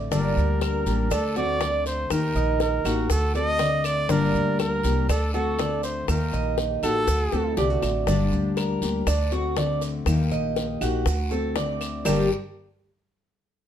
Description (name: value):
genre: latin, Cuban son and guajira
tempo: 120 BPM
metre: 4/4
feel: straight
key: G harmonic minor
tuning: A4 = 440 Hz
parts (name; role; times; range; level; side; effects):
- fingerpicked steel-string acoustic guitar; accompaniment; 0.0-12.3 s; G2 to G4; -26 LUFS; left 3 dB; none
- Cuban tres; arpeggios; 0.0-12.3 s; G3 to Eb5; -29 LUFS; right 4 dB; none
- upright bass; bass; 0.0-12.3 s; G1 to Eb2; -27 LUFS; right 1 dB; none
- warm trumpet; melody; 0.1-7.5 s; A4 to Eb5; -27 LUFS; right 1 dB; none
- bongos; percussion; 0.1-12.2 s; none; -32 LUFS; left 9 dB; none
- guiro; percussion; 0.1-12.2 s; none; -41 LUFS; left 4 dB; none
- maracas; percussion; 0.1-12.2 s; none; -40 LUFS; right 4 dB; none
- claves; percussion; 0.6-12.2 s; none; -38 LUFS; left 1 dB; none
- nylon-string guitar; second line; 7.3-8.1, 12.1-12.3 s; F#4 to Bb4; -28 LUFS; right 3 dB; none
room: moderate studio reverb, RT60 0.8 s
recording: dark, warm production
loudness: -21 LUFS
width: side -10 dB against mid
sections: 0.0-8.1 A section; 8.1-12.1 B section; 12.1-13.7 C section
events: drum fill 7.1-8.1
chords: 0.1 Gm; 1.1 D7; 2.1 Eb; 3.1 D7; 4.1 Gm; 5.1 D7; 6.1 Eb; 7.1 D7; 8.1 Gm; 9.1 D7; 10.1 Eb; 11.1 D7; 12.1 Gm